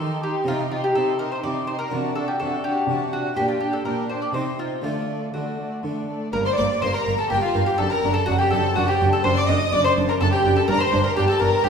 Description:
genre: classical, baroque-style concerto movement with solo episodes.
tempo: 124 BPM.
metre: 3/4.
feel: straight.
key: G minor.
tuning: A4 = 440 Hz.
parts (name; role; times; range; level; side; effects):
mandolin; melody; 0.0-11.7 s; Eb4 to Eb5; -24 LUFS; left 1 dB; none.
warm studio violin section; melody; 0.0-11.7 s; D5 to Eb6; -29 LUFS; left 3 dB; none.
rich studio violin section; second line; 0.0-11.7 s; D4 to Eb5; -27 LUFS; left 1 dB; none.
harpsichord; accompaniment; 0.0-11.7 s; F#2 to D5; -31 LUFS; equal; none.
warm studio viola section; accompaniment; 0.0-11.7 s; A3 to Eb4; -29 LUFS; right 1 dB; none.
warm chamber cello section; bass; 0.0-11.7 s; F#2 to Eb3; -27 LUFS; right 3 dB; none.
rich chamber double bass section; bass; 6.3-11.7 s; F#1 to G1; -28 LUFS; right 3 dB; none.
room: wet recital hall reverb, RT60 1.4 s.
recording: recorded in a church or concert hall.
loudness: -19 LUFS.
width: side -6 dB against mid.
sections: 0.0-6.3 A section; 6.3-11.7 B section.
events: none.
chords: 0.5 Cm; 1.9 D7/C; 3.4 Gm/Bb; 4.3 Cm; 4.8 D; 6.3 Gm; 7.8 D7/F#; 10.7 Gm.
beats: | 0.46 0.94 1.43 | 1.91 2.40 2.88 | 3.37 3.86 4.35 | 4.84 5.34 5.84 | 6.33 6.82 7.31 | 7.79 8.28 8.76 | 9.24 9.73 10.21 | 10.69 11.17 11.65.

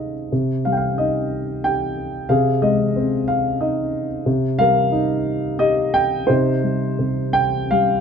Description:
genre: classical, lyrical solo piano.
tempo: 90 BPM.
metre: 3/4.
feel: uneven beats, rubato.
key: C minor.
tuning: A4 = 440 Hz.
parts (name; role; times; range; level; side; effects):
dark concert grand piano; solo; 0.0-8.0 s; C3 to G5; -17 LUFS; equal; none.
room: light reverb.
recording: dark, warm production.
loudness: -17 LUFS.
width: side -6 dB against mid.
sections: 0.0-8.0 A section.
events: none.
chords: 0.3 Cm; 2.3 Ab/C; 4.3 Cm7; 6.3 Cm.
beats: | 0.32 0.99 1.65 | 2.30 2.96 3.61 | 4.26 4.92 5.61 | 6.29 6.99 7.71.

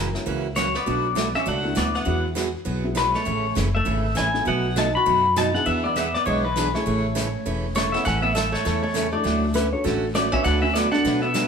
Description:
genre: country, western swing.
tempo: 200 BPM.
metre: 4/4.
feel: swing 60% on 8ths.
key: A major.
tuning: A4 = 440 Hz.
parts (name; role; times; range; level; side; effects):
pedal steel guitar; melody; 0.0-11.5 s; Bb4 to B5; -24 LUFS; left 3 dB; none.
archtop guitar, miked and amplified; second line; 0.0-11.5 s; E3 to F#4; -28 LUFS; right 2 dB; none.
picked steel-string acoustic guitar; accompaniment; 0.0-11.5 s; B2 to B4; -27 LUFS; right 5 dB; none.
upright bass; bass; 0.0-11.5 s; E1 to B2; -27 LUFS; equal; none.
tack piano; accompaniment; 0.1-11.3 s; G#3 to B4; -32 LUFS; left 3 dB; none.
vintage brush drum kit; drums; 0.1-11.5 s; brushed snare drum, hi-hat, kick drum, snare drum; -32 LUFS; equal; none.
clean lap steel guitar; second line; 9.6-10.1 s; A4 to C#5; -26 LUFS; left 4 dB; none.
room: wet large studio reverb, RT60 1.2 s.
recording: band playing live in one room.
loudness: -20 LUFS.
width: side -6 dB against mid.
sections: 0.0-8.1 A section; 8.1-11.5 B section.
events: none.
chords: 0.0 F#7; 0.9 Bm7; 2.1 Eadd9; 3.3 Amaj7; 4.5 B7; 5.7 E7; 6.9 Amaj7; 8.1 A; 9.3 Dmaj7; 10.5 Bm7/D.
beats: 0.27 0.57 | 0.87 1.17 1.47 1.77 | 2.07 2.37 2.67 2.97 | 3.27 3.57 3.87 4.17 | 4.47 4.77 5.07 5.37 | 5.67 5.96 6.26 6.56 | 6.86 7.16 7.46 7.76 | 8.06 8.36 8.66 8.96 | 9.26 9.55 9.85 10.15 | 10.45 10.75 11.05 11.35.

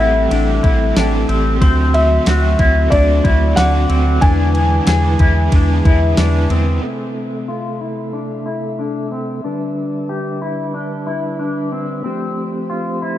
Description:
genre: dream pop.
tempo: 92 BPM.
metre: 4/4.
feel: straight.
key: A minor from 6.8 s.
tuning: A4 = 435 Hz.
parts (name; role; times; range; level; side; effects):
felt-muted upright piano; melody; 0.0-6.1 s; D5 to G#5; -20 LUFS; left 1 dB; tape echo, shimmer reverb.
cranked stack guitar; accompaniment; 0.0-6.9 s; A2 to G#4; -26 LUFS; right 5 dB; overdrive, tremolo, analog chorus, shimmer reverb.
mellow tonewheel organ; sustained chords; 0.0-13.2 s; C3 to E5; -22 LUFS; right 1 dB; fast rotary speaker, low-pass filter, shimmer reverb.
electric guitar with an envelope filter; arpeggios; 0.0-13.2 s; C4 to G#4; -22 LUFS; left 3 dB; lush chorus, low-pass filter, tape echo, shimmer reverb.
round analog bass; bass; 0.0-6.8 s; A1 to E2; -15 LUFS; equal; none.
clean 12-bit digital drum machine; drums; 0.3-6.7 s; kick drum, ride cymbal, snare drum, tambourine; -15 LUFS; equal; none.
glockenspiel with brass mallets; texture; 1.6-4.5 s; C6 to D6; -32 LUFS; equal; tape echo, shimmer reverb.
room: light reverb.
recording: dark, warm production.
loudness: -14 LUFS.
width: side -13 dB against mid.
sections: 0.0-6.8 A section; 6.8-13.2 B section.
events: none.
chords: 0.0 Am7; 1.6 D7; 4.2 E7; 6.8 Am; 9.4 Em7; 12.1 Fadd9.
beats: 0.31 0.96 | 1.61 2.27 2.92 3.57 | 4.22 4.88 5.53 6.18 | 6.83 7.48 8.14 8.79 | 9.44 10.09 10.74 11.40 | 12.05 12.70.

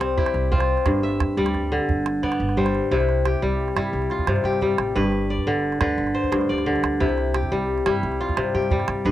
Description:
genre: west african traditional, West African string and xylophone music.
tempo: 117 BPM (dotted quarters).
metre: 12/8.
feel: straight.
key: C major.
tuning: A4 = 439 Hz.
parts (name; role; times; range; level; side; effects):
kora; arpeggios; 0.0-9.1 s; G2 to E5; -21 LUFS; left 1 dB; cassette tape.
upright bass; bass; 0.0-9.1 s; G1 to G2; -27 LUFS; right 1 dB; none.
calabash; percussion; 0.0-9.1 s; none; -26 LUFS; right 3 dB; none.
room: light reverb.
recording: home recording on cassette.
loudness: -20 LUFS.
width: side -13 dB against mid.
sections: 0.0-2.9 A section; 2.9-9.1 B section.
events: none.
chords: 0.0 C; 0.9 G; 2.9 C; 5.0 G; 7.0 C.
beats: 0.35 | 0.86 1.38 1.89 2.40 | 2.91 3.42 3.94 4.45 | 4.96 5.47 5.98 6.49 | 7.01 7.52 8.03 8.54 | 9.06.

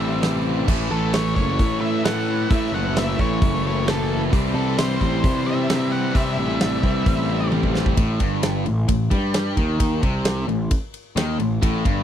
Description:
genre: classic rock.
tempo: 132 BPM.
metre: 4/4.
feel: straight.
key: unclear.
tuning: A4 = 440 Hz.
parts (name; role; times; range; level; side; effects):
octave-fuzz lead guitar; melody; 0.0-7.5 s; A4 to F#5; -28 LUFS; left 2 dB; distortion.
biting overdriven guitar; riff; 0.0-8.0, 11.6-12.0 s; G2 to C4; -28 LUFS; equal; none.
distorted electric guitar; riff; 0.0-12.0 s; G2 to E4; -28 LUFS; right 12 dB; overdrive.
tight distorted guitar; riff; 0.0-12.0 s; G2 to E4; -27 LUFS; left 12 dB; distortion.
fuzz picked electric bass; bass; 0.0-12.0 s; F#1 to C3; -24 LUFS; equal; overdrive.
big rock drum kit; drums; 0.2-12.0 s; crash cymbal, hi-hat, kick drum, ride cymbal, snare drum, toms; -22 LUFS; equal; none.
room: little or no reverb.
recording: dry, close 1970s-style studio recording.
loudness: -18 LUFS.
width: side -10 dB against mid.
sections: 0.0-8.0 A section; 8.0-12.0 B section.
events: drum fill 7.5-8.0.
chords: 0.0 C; 0.7 A; 4.3 C; 8.0 Am7b5/G.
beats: 0.22 | 0.68 1.14 1.59 2.05 | 2.50 2.96 3.41 3.87 | 4.33 4.78 5.24 5.69 | 6.15 6.61 7.06 7.52 | 7.97 8.43 8.89 9.34 | 9.80 10.25 10.71 11.16 | 11.62.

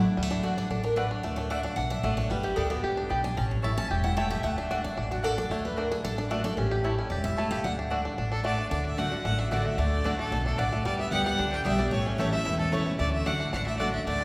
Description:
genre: bluegrass.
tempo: 225 BPM.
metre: 4/4.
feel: straight.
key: D major.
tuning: A4 = 440 Hz.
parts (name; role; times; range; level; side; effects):
picked steel-string acoustic guitar; accompaniment; 0.0-14.2 s; E2 to A5; -33 LUFS; equal; none.
upright bass; bass; 0.0-14.2 s; E1 to D2; -34 LUFS; equal; none.
bluegrass banjo; arpeggios; 0.2-14.2 s; D3 to G4; -36 LUFS; equal; none.
mandolin; stabs; 0.4-13.9 s; A3 to A5; -38 LUFS; equal; none.
rich fiddle; melody; 8.3-14.2 s; A4 to G5; -34 LUFS; equal; none.
room: wet church reverb, RT60 3.3 s.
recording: recorded in a church or concert hall.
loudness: -28 LUFS.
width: mono.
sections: 0.2-8.7 A section; 8.7-14.2 B section.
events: steel-string acoustic guitar solo 0.2-8.7.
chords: 0.2 D; 2.3 G; 3.4 A; 4.4 D; 6.6 A; 7.6 D; 10.9 G; 11.9 A; 13.0 D.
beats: | 0.17 0.44 0.71 0.97 | 1.24 1.51 1.77 2.04 | 2.31 2.57 2.84 3.11 | 3.37 3.64 3.91 4.17 | 4.44 4.71 4.97 5.24 | 5.51 5.77 6.04 6.31 | 6.58 6.84 7.11 7.38 | 7.64 7.91 8.18 8.45 | 8.71 8.98 9.25 9.52 | 9.78 10.05 10.32 10.59 | 10.85 11.12 11.39 11.65 | 11.92 12.19 12.46 12.72 | 12.99 13.26 13.53 13.79 | 14.06.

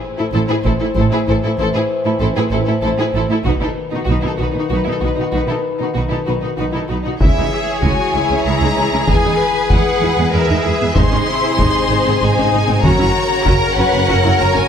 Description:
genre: cinematic, epic orchestral film score.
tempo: 96 BPM.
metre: 3/4.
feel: straight.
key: C# dorian from 7.2 s.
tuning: A4 = 440 Hz.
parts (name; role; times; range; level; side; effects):
mellow French horn section; sustained chords; 0.0-14.7 s; B#2 to C5; -22 LUFS; left 4 dB; none.
rich symphonic violin section; melody; 0.2-14.7 s; F#4 to B#5; -21 LUFS; left 3 dB; none.
warm studio violin section; second line; 0.2-14.7 s; D#4 to C#5; -22 LUFS; left 3 dB; none.
warm symphonic viola section; accompaniment; 0.2-14.6 s; G#3 to F#4; -23 LUFS; right 1 dB; none.
clear symphonic cello section; bass; 0.2-14.7 s; A2 to B4; -22 LUFS; right 3 dB; none.
rich symphonic double bass section; bass; 0.3-14.6 s; F#1 to E2; -20 LUFS; right 3 dB; none.
taiko ensemble; drums; 0.6-14.0 s; none; -18 LUFS; equal; none.
room: moderate scoring stage reverb, RT60 1.8 s.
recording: none.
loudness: -13 LUFS.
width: side -8 dB against mid.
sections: 0.0-7.2 A section; 7.2-14.7 B section.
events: build-up 0.0-7.2.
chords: 0.0 Am; 3.5 B; 7.2 C#m; 9.1 E; 11.0 G#; 12.8 F#.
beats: 0.33 0.96 | 1.58 2.21 2.83 | 3.46 4.08 4.71 | 5.33 5.96 6.58 | 7.21 7.83 8.46 | 9.08 9.71 10.33 | 10.96 11.58 12.21 | 12.83 13.46 14.08.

